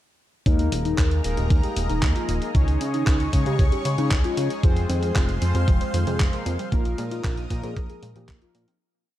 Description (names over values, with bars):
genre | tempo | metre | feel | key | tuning
italo disco | 115 BPM | 4/4 | straight | unclear | A4 = 440 Hz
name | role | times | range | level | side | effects
soft octave-layered synth lead | melody | 0.5-8.7 s | Eb4 to C5 | -30 LUFS | left 1 dB | chorus, phaser, vintage 12-bit sampler grit, digital delay
lush unison pad | sustained chords | 0.8-8.8 s | Ab4 to Eb6 | -34 LUFS | equal | chorus, phaser
analog synth brass | stabs | 0.5-8.8 s | F3 to Db5 | -32 LUFS | left 4 dB | chorus
chorused synth bass | bass | 0.5-8.7 s | Eb1 to Db3 | -24 LUFS | equal | none
dusty soul sampler-style drum kit | drums | 0.5-8.8 s | handclaps, hi-hat | -32 LUFS | equal | none
electronic kick drum | drums | 0.5-8.4 s | none | -21 LUFS | equal | none
wide unison pluck | arpeggios | 4.6-8.8 s | F2 to F4 | -34 LUFS | right 3 dB | digital delay
room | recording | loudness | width
little or no reverb | dark, warm production | -20 LUFS | side -13 dB against mid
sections
0.5-8.8 chorus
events
fade-out 6.0-8.8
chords
0.5 Ebsus4; 2.5 Dbsus2; 4.6 Fm; 6.7 Bbsus4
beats
| 0.46 0.98 1.50 2.03 | 2.55 3.07 3.59 4.11 | 4.63 5.16 5.68 6.20 | 6.72 7.24 7.76 8.29